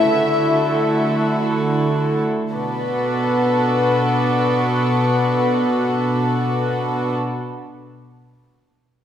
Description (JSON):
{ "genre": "cinematic", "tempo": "free time", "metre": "none", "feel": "none", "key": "B minor", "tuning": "A4 = 440 Hz", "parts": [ { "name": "warm symphonic violin section", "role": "melody", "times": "0.0-7.1 s", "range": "B4 to E5", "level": "-22 LUFS", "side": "left 3 dB", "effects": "none" }, { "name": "warm symphonic violin section", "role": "second line", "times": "0.0-7.1 s", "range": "F#4 to A4", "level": "-23 LUFS", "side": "left 2 dB", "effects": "none" }, { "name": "warm studio viola section", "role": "accompaniment", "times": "0.0-7.1 s", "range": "A3 to E4", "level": "-22 LUFS", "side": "right 2 dB", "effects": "none" }, { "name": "warm symphonic cello section", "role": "bass", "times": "0.0-7.1 s", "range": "B2 to D3", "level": "-23 LUFS", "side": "equal", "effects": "none" } ], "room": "wet scoring stage reverb, RT60 1.8 s", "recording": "heard from further back in the room", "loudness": "-16 LUFS", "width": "side -9 dB against mid", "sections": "0.0-2.5 A section; 2.5-7.6 B section", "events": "slowing down 0.0-2.5", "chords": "0.1 Dadd9; 2.5 Bm7" }